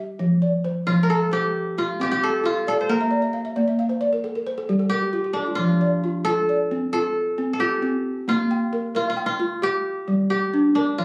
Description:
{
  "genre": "west african traditional",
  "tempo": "89 BPM (dotted quarters)",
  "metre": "12/8",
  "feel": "straight",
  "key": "F major",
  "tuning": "A4 = 435 Hz",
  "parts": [
    { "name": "balafon", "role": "arpeggios", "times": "0.0-11.0 s", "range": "F3 to G5", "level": "-24 LUFS", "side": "equal", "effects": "none" },
    { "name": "kora", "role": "melody", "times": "0.9-11.0 s", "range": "D4 to C5", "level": "-26 LUFS", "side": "equal", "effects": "none" }
  ],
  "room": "moderate spring reverb, RT60 1.5 s",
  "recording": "recorded on a phone in the room, club reverb, compression",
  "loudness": "-22 LUFS",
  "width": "mono",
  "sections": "0.0-5.6 A section; 5.6-11.0 B section",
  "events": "balafon fill 3.0-5.6",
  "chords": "0.2 F; 2.9 Bb; 4.2 N.C.; 5.6 F; 8.3 Bb5; 9.6 Gm",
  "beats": "| 0.19 0.87 1.54 2.21 | 2.89 3.56 4.23 4.90 | 5.58 6.25 6.92 7.60 | 8.28 8.95 9.63 10.30 | 10.98"
}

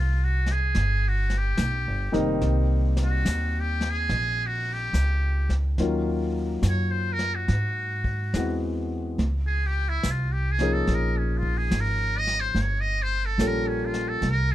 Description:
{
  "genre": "jazz ballad",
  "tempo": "71 BPM",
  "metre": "4/4",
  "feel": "swing 66% on 8ths",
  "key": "unclear",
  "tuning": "A4 = 440 Hz",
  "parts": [
    { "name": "trumpet with metal mute", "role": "melody", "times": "0.0-14.5 s", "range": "Db4 to Eb5", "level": "-28 LUFS", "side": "equal", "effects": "none" },
    { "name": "upright bass", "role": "bass", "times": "0.0-14.5 s", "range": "F1 to Ab2", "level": "-25 LUFS", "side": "equal", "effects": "none" },
    { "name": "vintage brush drum kit", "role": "drums", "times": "0.5-14.5 s", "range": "brushed snare drum, hi-hat, kick drum, snare drum", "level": "-34 LUFS", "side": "left 2 dB", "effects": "none" },
    { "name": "warm concert grand piano", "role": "accompaniment", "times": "2.1-14.2 s", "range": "D#3 to A4", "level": "-29 LUFS", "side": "left 2 dB", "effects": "none" }
  ],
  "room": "little or no reverb",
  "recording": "none",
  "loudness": "-23 LUFS",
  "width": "side -13 dB against mid",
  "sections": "0.0-14.5 A section",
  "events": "muted trumpet solo 0.0-14.5",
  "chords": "0.0 Csus4; 0.7 G7alt; 2.4 Cm7; 5.8 Ebm9; 7.5 Ab7alt; 9.2 Db69; 12.6 Gm7b5",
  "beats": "0.75 1.58 | 2.42 3.26 4.10 4.94 | 5.78 6.62 7.47 8.32 | 9.18 10.03 10.87 11.71 | 12.55 13.39 14.22"
}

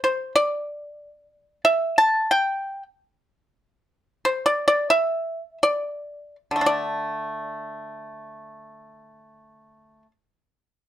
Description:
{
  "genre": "chinese traditional",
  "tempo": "57-95 BPM",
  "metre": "4/4",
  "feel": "rubato",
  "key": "D shang mode",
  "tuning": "A4 = 440 Hz",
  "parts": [
    { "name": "pipa", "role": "solo", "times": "0.0-10.1 s", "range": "D3 to A5", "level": "-20 LUFS", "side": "equal", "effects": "none" }
  ],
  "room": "light reverb",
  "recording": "none",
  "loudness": "-20 LUFS",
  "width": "side -12 dB against mid",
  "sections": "0.0-6.6 A section; 6.6-10.7 B section",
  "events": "slowing down 0.3-6.6",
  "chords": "none",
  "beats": "| 0.33 0.97 1.64 2.33 | 3.06 3.84 4.68 5.62 | 6.65 7.67 8.66 9.66"
}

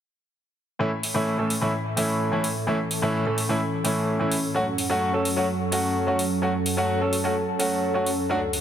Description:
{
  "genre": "EDM, festival progressive house",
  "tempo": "128 BPM",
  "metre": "4/4",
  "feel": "straight",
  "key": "A major",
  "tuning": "A4 = 440 Hz",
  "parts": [
    { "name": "clear concert grand piano", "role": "accompaniment", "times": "0.8-8.4 s", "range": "A2 to A4", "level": "-24 LUFS", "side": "equal", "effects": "dub echo" },
    { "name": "lush unison pad", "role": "sustained chords", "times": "0.8-8.6 s", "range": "D2 to A4", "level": "-28 LUFS", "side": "right 1 dB", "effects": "chorus" },
    { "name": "electronic hi-hat", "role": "drums", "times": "1.0-8.6 s", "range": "none", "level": "-30 LUFS", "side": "equal", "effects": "none" }
  ],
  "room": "light reverb, small room ambience",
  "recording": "heavily compressed radio sound",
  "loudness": "-22 LUFS",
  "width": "side -9 dB against mid",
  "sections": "0.8-8.6 A section",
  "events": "filter sweep on analog synth pad 0.8-8.6",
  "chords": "0.8 A; 4.5 F#m",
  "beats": "| 0.80 1.27 1.74 2.21 | 2.67 3.14 3.61 4.08 | 4.55 5.02 5.49 5.96 | 6.42 6.89 7.36 7.83 | 8.30"
}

